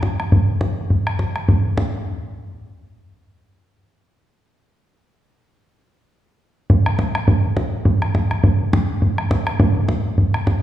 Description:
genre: celtic folk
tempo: 207 BPM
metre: 4/4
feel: swing 56% on 8ths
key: none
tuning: none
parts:
  - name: bodhran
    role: percussion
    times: 0.0-1.8, 6.7-10.5 s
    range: none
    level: -16 LUFS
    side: equal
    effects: none
room: wet recital hall reverb, RT60 1.7 s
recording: heard from further back in the room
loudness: -16 LUFS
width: side -12 dB against mid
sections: 0.0-2.1 A section; 2.1-10.6 A section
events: none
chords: none

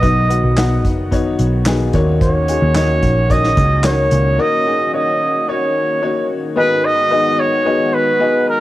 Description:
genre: piano-driven pop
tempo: 110 BPM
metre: 4/4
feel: straight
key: G# minor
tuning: A4 = 437 Hz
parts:
  - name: breathy trumpet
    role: melody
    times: 0.0-8.6 s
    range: A#4 to D#5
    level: -16 LUFS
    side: right 1 dB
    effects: none
  - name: clear upright piano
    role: accompaniment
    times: 0.0-8.6 s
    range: G#2 to F#5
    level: -20 LUFS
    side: left 4 dB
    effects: none
  - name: warm analog pad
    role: sustained chords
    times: 0.0-8.6 s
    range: D#3 to F#4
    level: -25 LUFS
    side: right 1 dB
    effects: chorus
  - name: vintage muted picked electric bass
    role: bass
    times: 0.0-4.4 s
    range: F#1 to D#2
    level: -16 LUFS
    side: equal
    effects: none
  - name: unplugged drum kit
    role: drums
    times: 0.0-4.2 s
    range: handclaps, hi-hat, kick drum, snare drum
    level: -20 LUFS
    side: equal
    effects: cassette tape
room: light reverb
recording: home recording on cassette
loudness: -13 LUFS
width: side -15 dB against mid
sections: 0.0-6.6 A section; 6.6-8.6 B section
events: break 4.4-6.6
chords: 0.0 B; 1.9 D#m7; 6.6 G#m7

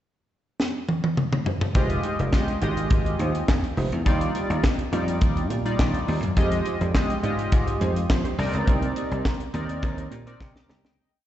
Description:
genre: early-eighties boogie funk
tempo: 104 BPM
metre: 4/4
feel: straight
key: F dorian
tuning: A4 = 440 Hz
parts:
  - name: tight funk drum kit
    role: drums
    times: 0.6-11.0 s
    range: handclaps, hi-hat, kick drum, snare drum, toms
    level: -24 LUFS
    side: equal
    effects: none
  - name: chorused polysynth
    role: accompaniment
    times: 1.7-11.1 s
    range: G3 to D6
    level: -28 LUFS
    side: left 1 dB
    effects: slapback echo
  - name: mellow electric guitar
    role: riff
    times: 1.7-10.9 s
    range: Ab3 to Eb5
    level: -33 LUFS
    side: right 5 dB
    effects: ensemble chorus, slapback echo
  - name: dry thumbed slap bass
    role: bass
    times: 1.8-11.0 s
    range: F1 to F3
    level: -26 LUFS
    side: equal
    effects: none
room: light reverb, small room ambience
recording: live gig heard through the venue's PA, recital hall reverb, nothing above 8.0 kHz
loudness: -22 LUFS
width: side -12 dB against mid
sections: 0.0-1.8 pickup bar; 1.8-11.0 verse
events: drum fill 0.6-1.8, 10.4-11.0; fade-out 8.7-11.0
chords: 0.0 N.C.; 1.8 Fm9; 4.1 Ebmaj9; 6.4 Fm9; 8.4 Cm9

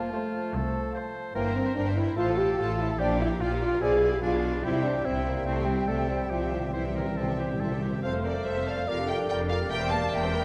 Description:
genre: quick classical-period movement for symphony orchestra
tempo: 145 BPM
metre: 4/4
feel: rubato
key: unclear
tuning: A4 = 440 Hz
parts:
  - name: clear oboe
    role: second line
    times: 0.0-10.4 s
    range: C4 to F5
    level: -39 LUFS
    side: equal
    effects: none
  - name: dark clarinet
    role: second line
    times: 0.0-10.4 s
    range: Bb4 to D5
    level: -42 LUFS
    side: equal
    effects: none
  - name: mellow silver concert flute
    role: second line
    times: 0.0-10.4 s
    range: Bb4 to A5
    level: -39 LUFS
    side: equal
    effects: none
  - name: warm bassoon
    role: accompaniment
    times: 0.0-10.4 s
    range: E3 to A3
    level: -40 LUFS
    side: equal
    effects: none
  - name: warm French horn section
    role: sustained chords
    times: 0.0-10.4 s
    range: E3 to A4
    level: -32 LUFS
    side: equal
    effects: none
  - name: dark studio double bass section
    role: bass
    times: 0.0-10.4 s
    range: E1 to C2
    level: -36 LUFS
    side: equal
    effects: none
  - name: rich studio cello section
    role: bass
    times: 0.0-10.4 s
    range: C2 to C3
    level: -37 LUFS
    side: equal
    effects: none
  - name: rich studio violin section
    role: melody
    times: 0.1-10.4 s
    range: D5 to A5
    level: -41 LUFS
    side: equal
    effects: none
  - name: clear studio violin section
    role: second line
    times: 0.1-10.4 s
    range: A4 to A5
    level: -42 LUFS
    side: equal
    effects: none
  - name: rich studio viola section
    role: accompaniment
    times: 0.1-10.4 s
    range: A3 to C5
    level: -40 LUFS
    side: equal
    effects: none
  - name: timpani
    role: percussion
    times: 4.6-8.0 s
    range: C3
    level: -38 LUFS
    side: equal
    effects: none
room: wet scoring stage reverb, RT60 1.8 s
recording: dark, warm production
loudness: -28 LUFS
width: mono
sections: 0.0-8.0 A section; 8.0-10.4 B section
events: timpani fill 4.6-8.0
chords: 0.0 F; 1.4 C7/G; 2.2 F/A; 3.0 Gm7/Bb; 3.8 Bdim7; 4.6 C; 8.0 F; 8.9 Gm7/F; 9.7 C7/E

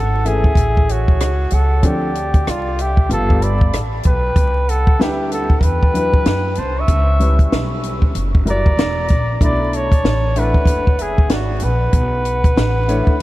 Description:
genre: hip hop, jazz-hop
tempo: 95 BPM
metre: 4/4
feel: swing 62% on 16ths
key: unclear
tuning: A4 = 440 Hz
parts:
  - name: warm flugelhorn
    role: melody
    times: 0.0-13.2 s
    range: F4 to E5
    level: -21 LUFS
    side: equal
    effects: diffuse ambient delay
  - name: mellow concert flute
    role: second line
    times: 0.0-13.2 s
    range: C#5 to C#6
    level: -28 LUFS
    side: right 3 dB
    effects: none
  - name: upright bass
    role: bass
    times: 0.0-13.1 s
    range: E1 to F#2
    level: -19 LUFS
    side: equal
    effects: none
  - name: warm upright piano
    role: accompaniment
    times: 0.2-13.1 s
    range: E3 to E5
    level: -25 LUFS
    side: left 2 dB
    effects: none
  - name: compact cocktail drum kit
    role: drums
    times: 0.3-13.2 s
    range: hi-hat, kick drum, rim click, snare drum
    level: -16 LUFS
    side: equal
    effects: none
room: light reverb, studio reverb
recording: vinyl crackle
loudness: -14 LUFS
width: side -17 dB against mid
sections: 0.0-13.2 A section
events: none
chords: 0.0 F#m7; 1.8 Dm7; 3.1 G9; 4.4 Cmaj9#11; 6.9 C#m7b5; 8.2 F#7b9; 9.4 Bm11

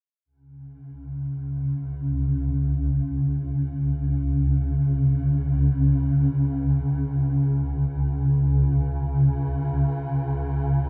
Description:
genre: dark ambient drone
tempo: free time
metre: none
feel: none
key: unclear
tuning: A4 = 439 Hz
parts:
  - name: swarming drone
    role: solo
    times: 1.1-10.9 s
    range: C#2 to C#3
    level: -24 LUFS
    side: equal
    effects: built-in reverb, tape echo
room: moderate huge ambient reverb, RT60 8.0 s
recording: none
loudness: -24 LUFS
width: mono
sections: 0.2-10.9 A section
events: none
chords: none

